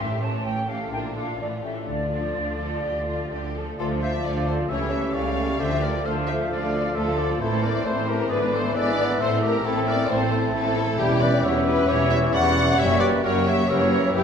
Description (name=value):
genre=classical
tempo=132 BPM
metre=4/4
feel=rubato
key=D minor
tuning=A4 = 440 Hz
part: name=dark symphonic violin section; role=melody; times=0.0-14.2 s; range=F4 to F#5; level=-28 LUFS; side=left 3 dB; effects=none
part: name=bright flute section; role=second line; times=0.0-14.2 s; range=G4 to A5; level=-30 LUFS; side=equal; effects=none
part: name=rich symphonic violin section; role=second line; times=0.0-14.2 s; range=A3 to C5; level=-33 LUFS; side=left 3 dB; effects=none
part: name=rich symphonic viola section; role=accompaniment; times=0.0-14.2 s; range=D3 to D4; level=-32 LUFS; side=right 2 dB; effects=none
part: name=concert harp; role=arpeggios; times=0.0-14.2 s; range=E2 to E6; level=-31 LUFS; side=left 5 dB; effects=none
part: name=rich symphonic cello section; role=bass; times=0.0-14.2 s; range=E2 to D3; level=-31 LUFS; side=right 4 dB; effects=none
part: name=rich symphonic double bass section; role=bass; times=0.0-14.2 s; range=E1 to D2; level=-30 LUFS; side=right 3 dB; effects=none
part: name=bright clarinet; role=second line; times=3.8-14.2 s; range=E4 to D5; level=-31 LUFS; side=left 1 dB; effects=none
part: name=bright oboe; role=second line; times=3.8-14.2 s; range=C5 to A5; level=-32 LUFS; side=right 1 dB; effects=none
part: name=warm bassoon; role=accompaniment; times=3.8-14.2 s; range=E3 to C4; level=-30 LUFS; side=right 1 dB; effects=none
part: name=warm French horn section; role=sustained chords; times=3.8-14.2 s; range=A3 to G4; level=-29 LUFS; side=left 3 dB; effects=none
room=wet recital hall reverb, RT60 1.6 s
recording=minimal, uncompressed stereo recording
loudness=-20 LUFS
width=side -7 dB against mid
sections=0.0-3.8 A section; 3.8-14.2 B section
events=none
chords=0.0 A7; 0.9 Bb; 1.4 A; 1.9 Dm; 4.7 A7/C#; 5.6 Dm; 7.4 Am; 8.3 E7/G#; 9.2 Am; 11.0 C#dim/E; 12.8 F#7b9